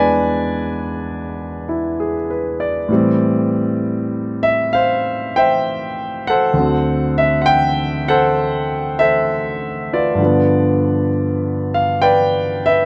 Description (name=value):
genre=solo jazz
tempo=66 BPM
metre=4/4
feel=swing 68% on 8ths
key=unclear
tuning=A4 = 440 Hz
part: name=clear concert grand piano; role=solo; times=0.0-12.9 s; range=D2 to B5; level=-17 LUFS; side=equal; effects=none
room=light reverb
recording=dry, close 1970s-style studio recording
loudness=-17 LUFS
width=mono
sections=0.0-12.9 A section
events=none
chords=0.0 E7; 2.9 Am7; 6.5 D7; 10.2 G7